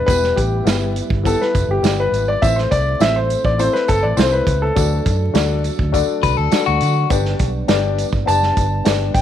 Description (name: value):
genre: uptempo 1960s-style soul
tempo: 102 BPM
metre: 4/4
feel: straight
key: G major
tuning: A4 = 441 Hz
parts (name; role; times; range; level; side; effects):
- warm concert grand piano; melody; 0.0-9.2 s; G4 to A5; -19 LUFS; left 1 dB; none
- mellow tonewheel organ; sustained chords; 0.0-9.2 s; F#3 to E4; -28 LUFS; right 10 dB; slow rotary speaker, chorus vibrato
- dark upright piano; accompaniment; 0.1-9.2 s; B3 to D5; -23 LUFS; left 11 dB; none
- vintage muted fingered electric bass; bass; 0.1-9.2 s; E1 to D3; -20 LUFS; equal; none
- warm soul drum kit; drums; 0.1-9.2 s; hi-hat, kick drum, snare drum; -20 LUFS; right 2 dB; none
- tambourine; percussion; 0.1-9.2 s; none; -33 LUFS; right 15 dB; none
- clean electric guitar; riff; 6.2-7.1 s; F#4 to B4; -20 LUFS; left 13 dB; none
room: light reverb, small room ambience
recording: 1960s-style stereo with parts hard left and right, vinyl crackle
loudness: -15 LUFS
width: side -10 dB against mid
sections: 0.0-9.2 A section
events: grand piano solo 0.0-9.2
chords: 0.1 Em; 2.4 Am; 4.8 D; 7.1 G